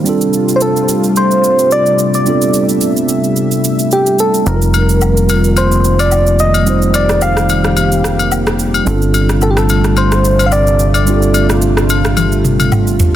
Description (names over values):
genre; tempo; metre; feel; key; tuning
amapiano; 109 BPM; 4/4; swing 55% on 16ths; unclear; A4 = 440 Hz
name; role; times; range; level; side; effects
mellow tine electric piano; accompaniment; 0.0-13.2 s; G3 to C5; -17 LUFS; right 4 dB; none
warm analog pad; sustained chords; 0.0-13.2 s; C3 to E5; -18 LUFS; left 2 dB; chorus
afro-pop drum kit; drums; 0.1-13.1 s; rim click, shaker, toms; -18 LUFS; right 1 dB; none
soft struck synth lead; melody; 0.6-11.5 s; G4 to F5; -15 LUFS; equal; chorus, digital delay
plucky analog bass; bass; 4.5-13.2 s; F1 to G1; -14 LUFS; equal; none
agogo bells and woodblock; percussion; 4.7-12.9 s; none; -20 LUFS; left 7 dB; none
room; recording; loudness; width
light reverb; dense, heavily limited modern master; -10 LUFS; side -12 dB against mid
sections
0.0-13.2 A section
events
drum fill 12.2-13.2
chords
0.1 G9sus4; 4.5 F9sus4; 8.9 G9sus4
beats
| 0.06 0.61 1.16 1.71 | 2.26 2.81 3.36 3.91 | 4.46 5.01 5.57 6.12 | 6.67 7.22 7.77 8.32 | 8.87 9.42 9.97 10.52 | 11.07 11.62 12.17 12.72